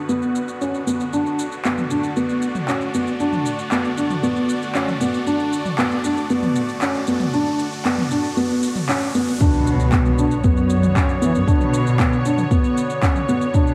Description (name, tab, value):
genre	piano and strings electronica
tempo	116 BPM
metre	4/4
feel	straight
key	B minor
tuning	A4 = 440 Hz
part	muted studio string section	sustained chords	0.0-13.7 s	D3 to D5	-30 LUFS	equal	low-pass filter
part	riser and impact	sound effects	0.0-11.5 s	none	-33 LUFS	equal	none
part	felt-muted upright piano	riff	0.1-13.7 s	B3 to D4	-23 LUFS	equal	digital delay
part	deep house drum kit	drums	0.1-13.7 s	handclaps, shaker, toms	-29 LUFS	equal	overdrive, small room reverb
part	dark studio cello section	bass	9.4-13.7 s	F#2 to E3	-24 LUFS	equal	sidechain pumping
part	electronic kick drum	drums	9.4-13.6 s	none	-20 LUFS	equal	small room reverb
room	moderate echo chamber reverb, RT60 1.7 s, studio ambience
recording	none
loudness	-20 LUFS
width	mono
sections	0.0-9.4 A section; 9.4-13.7 B section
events	build-up 0.0-9.4; riser 0.0-9.4; drop 9.4-13.7; impact 9.4-11.5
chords	0.0 Bmadd9; 1.1 D; 9.4 Bmadd9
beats	0.10 0.61 | 1.13 1.65 2.17 2.68 | 3.20 3.72 4.24 4.75 | 5.27 5.79 6.30 6.82 | 7.34 7.86 8.37 8.89 | 9.41 9.93 10.44 10.96 | 11.48 11.99 12.51 13.03 | 13.54